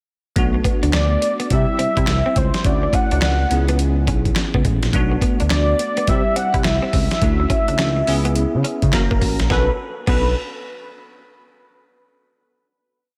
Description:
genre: R&B, new jack swing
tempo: 105 BPM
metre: 4/4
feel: swing 63% on 16ths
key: unclear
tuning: A4 = 439 Hz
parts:
  - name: bell-like tine electric piano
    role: accompaniment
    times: 0.4-10.3 s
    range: G3 to A#5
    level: -27 LUFS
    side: equal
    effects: ensemble chorus
  - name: smooth gliding synth bass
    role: bass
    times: 0.4-10.3 s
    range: F#1 to C#3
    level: -22 LUFS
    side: equal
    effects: none
  - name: dusty soul sampler-style drum kit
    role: drums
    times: 0.4-10.2 s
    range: crash cymbal, handclaps, hi-hat, kick drum, snare drum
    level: -23 LUFS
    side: equal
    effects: none
  - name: direct-recorded clean electric guitar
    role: riff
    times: 0.5-10.2 s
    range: G#3 to E4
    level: -31 LUFS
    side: equal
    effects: lush chorus
  - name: warm velvety synth lead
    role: melody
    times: 0.9-10.3 s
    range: B4 to F#5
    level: -25 LUFS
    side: equal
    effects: chorus, delay
room: moderate plate reverb, RT60 3.0 s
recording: dreamy mix soaked in reverb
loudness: -18 LUFS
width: mono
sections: 0.4-9.5 verse; 9.5-11.8 final chord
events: tine electric piano fill 8.6-9.5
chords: 0.4 Bm7; 1.5 C; 2.6 Dmaj7; 3.5 C#m7; 4.9 Bm7; 6.1 C; 7.2 Dmaj7; 8.1 C#m7; 8.9 F#; 9.5 Bm7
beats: | 0.36 0.93 1.50 2.08 | 2.65 3.22 3.79 4.36 | 4.93 5.50 6.08 6.65 | 7.22 7.79 8.36 8.93 | 9.50 10.07

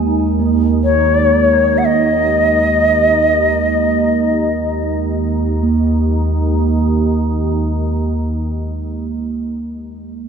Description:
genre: world meditative, free-time meditation music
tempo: free time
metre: none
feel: none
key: unclear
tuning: A4 = 440 Hz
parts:
  - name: organ-like drone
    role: drone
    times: 0.0-8.7 s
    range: Eb2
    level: -17 LUFS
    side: right 1 dB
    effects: ensemble chorus, built-in reverb
  - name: bronze singing bowl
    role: texture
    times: 0.0-8.7 s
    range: Ab3 to Bb3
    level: -20 LUFS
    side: right 4 dB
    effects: none
  - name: mellow Native American-style cedar flute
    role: melody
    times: 0.8-4.9 s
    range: Db5 to Gb5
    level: -14 LUFS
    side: left 2 dB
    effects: none
room: wet church reverb, RT60 2.9 s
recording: none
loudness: -13 LUFS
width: side -6 dB against mid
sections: 0.0-5.6 A section; 5.6-9.4 B section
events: none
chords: none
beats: free time

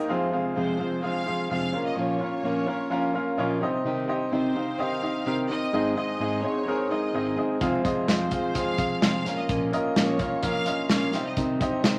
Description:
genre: piano-driven pop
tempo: 128 BPM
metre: 4/4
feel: straight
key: unclear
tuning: A4 = 440 Hz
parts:
  - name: bright upright piano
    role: accompaniment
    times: 0.0-12.0 s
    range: Eb2 to F5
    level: -31 LUFS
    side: equal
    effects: none
  - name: fingerpicked plugged-in steel-string acoustic guitar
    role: riff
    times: 0.0-12.0 s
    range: F2 to Ab4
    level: -30 LUFS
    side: equal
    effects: none
  - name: clear studio violin section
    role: melody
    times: 0.6-12.0 s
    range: C5 to F5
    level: -36 LUFS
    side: equal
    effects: none
  - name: modern studio drum kit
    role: drums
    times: 7.6-12.0 s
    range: hi-hat, kick drum, snare drum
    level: -29 LUFS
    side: equal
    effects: none
room: wet club reverb, RT60 0.8 s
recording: vinyl crackle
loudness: -26 LUFS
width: mono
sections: 0.1-12.0 A section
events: upright piano fill 3.1-3.8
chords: 0.1 Fm; 1.7 Bbm; 3.6 Cm; 5.7 Ab; 7.6 Fm; 9.3 Bbm; 11.1 Cm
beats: | 0.09 0.56 1.03 1.50 | 1.97 2.44 2.91 3.38 | 3.85 4.32 4.79 5.26 | 5.73 6.20 6.67 7.14 | 7.61 8.08 8.55 9.02 | 9.49 9.96 10.43 10.90 | 11.38 11.85

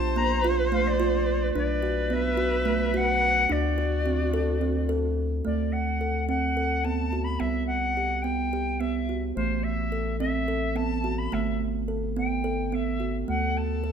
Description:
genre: contemporary instrumental, chamber music in an uneven meter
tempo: 215 BPM (eighths)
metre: 7/8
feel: straight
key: D mixolydian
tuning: A4 = 443 Hz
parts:
  - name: bright reedy silver concert flute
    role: melody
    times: 0.0-13.9 s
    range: C5 to B5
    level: -29 LUFS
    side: left 4 dB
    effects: none
  - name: dark viola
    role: second line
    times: 0.0-5.2, 13.3-13.9 s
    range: F#4 to C5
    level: -30 LUFS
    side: equal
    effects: none
  - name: kalimba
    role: arpeggios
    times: 0.0-13.9 s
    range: A3 to A4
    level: -28 LUFS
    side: right 6 dB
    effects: none
  - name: round analog bass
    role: bass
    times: 0.0-13.9 s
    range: G1 to D2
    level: -29 LUFS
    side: left 2 dB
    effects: none
room: light reverb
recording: minimal, uncompressed stereo recording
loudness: -24 LUFS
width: side -7 dB against mid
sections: 0.0-5.5 A section; 5.5-13.9 B section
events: none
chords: 0.0 Bb; 1.6 Bm; 3.5 D7; 5.5 D; 7.4 C5; 9.4 A5; 11.3 Gadd9; 13.3 D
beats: 0.16 0.44 0.72 1.00 1.27 | 1.55 1.83 2.11 2.39 2.67 2.95 3.23 | 3.51 3.79 4.06 4.34 4.62 4.90 5.18 | 5.46 5.74 6.02 6.30 6.58 6.86 7.13 | 7.41 7.69 7.97 8.25 8.53 8.81 9.09 | 9.37 9.65 9.93 10.21 10.49 10.77 11.05 | 11.33 11.61 11.89 12.17 12.45 12.73 13.01 | 13.29 13.56 13.84

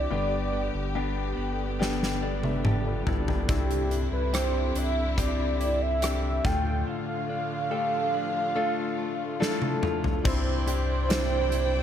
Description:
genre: pop ballad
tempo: 71 BPM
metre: 4/4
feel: straight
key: C major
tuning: A4 = 439 Hz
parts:
  - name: warm velvety synth lead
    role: melody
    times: 0.0-11.8 s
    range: G4 to G5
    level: -30 LUFS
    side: right 2 dB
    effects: chorus
  - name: clear baby grand piano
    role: accompaniment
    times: 0.0-11.8 s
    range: G2 to E5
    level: -32 LUFS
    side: left 7 dB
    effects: none
  - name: warm studio string section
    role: sustained chords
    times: 0.0-11.8 s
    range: D3 to G5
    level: -35 LUFS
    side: equal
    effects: none
  - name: direct-recorded clean electric guitar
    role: arpeggios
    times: 0.0-11.8 s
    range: G2 to A4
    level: -38 LUFS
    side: right 8 dB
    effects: none
  - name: warm sub bass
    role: bass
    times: 0.0-11.8 s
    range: G1 to D2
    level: -30 LUFS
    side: equal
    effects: none
  - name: huge arena drum kit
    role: drums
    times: 1.8-11.7 s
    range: crash cymbal, hi-hat, kick drum, rim click, snare drum, toms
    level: -29 LUFS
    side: equal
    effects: none
room: little or no reverb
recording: none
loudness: -25 LUFS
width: side -9 dB against mid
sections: 0.0-10.3 A section; 10.3-11.8 B section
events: drum fill 1.8-3.5, 9.4-10.3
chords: 0.1 G; 3.5 Cadd9; 6.4 Dm; 10.3 Cadd9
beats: | 0.11 0.95 1.80 2.65 | 3.49 4.34 5.18 6.03 | 6.87 7.72 8.56 9.41 | 10.25 11.10

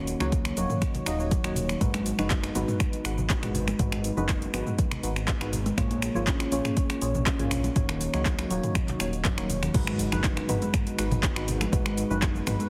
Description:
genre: afro house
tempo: 121 BPM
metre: 4/4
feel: straight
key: G# dorian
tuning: A4 = 438 Hz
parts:
  - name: dark analog pad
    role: sustained chords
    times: 0.1-12.7 s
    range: G#3 to C#5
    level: -40 LUFS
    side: equal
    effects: chorus, sidechain pumping
  - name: kalimba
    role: arpeggios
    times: 0.0-12.7 s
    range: D#3 to E#4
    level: -34 LUFS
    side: equal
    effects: sidechain pumping, tape echo
  - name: deep mellow chord stab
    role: stabs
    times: 0.0-12.7 s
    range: G#3 to D#5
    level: -37 LUFS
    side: equal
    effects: chorus, sidechain pumping, tape echo
  - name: dark detuned saw bass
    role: bass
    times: 0.0-12.6 s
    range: D#1 to C#2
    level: -34 LUFS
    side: equal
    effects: sidechain pumping
  - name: deep house drum kit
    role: drums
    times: 0.1-12.7 s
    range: cabasa, crash cymbal, finger snaps, handclaps, hi-hat, toms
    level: -34 LUFS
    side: equal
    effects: overdrive
  - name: congas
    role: percussion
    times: 0.1-12.7 s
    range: none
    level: -38 LUFS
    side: equal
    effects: none
  - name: electronic kick drum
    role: drums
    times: 0.3-12.3 s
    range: none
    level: -30 LUFS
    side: equal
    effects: overdrive
  - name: impact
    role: sound effects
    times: 9.9-11.7 s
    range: none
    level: -43 LUFS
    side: equal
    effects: none
room: light reverb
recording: heavily compressed radio sound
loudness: -27 LUFS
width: mono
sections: 0.0-9.7 A section; 9.7-12.7 B section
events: drop 9.7-12.7; impact 9.7-11.7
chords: 0.0 D#m7; 1.8 G#m7; 5.8 A#m7; 7.8 D#m7; 9.7 G#m7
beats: 0.32 0.82 1.31 | 1.81 2.31 2.80 3.30 | 3.79 4.29 4.79 5.28 | 5.78 6.27 6.77 7.26 | 7.76 8.26 8.75 9.25 | 9.74 10.24 10.73 11.23 | 11.73 12.22

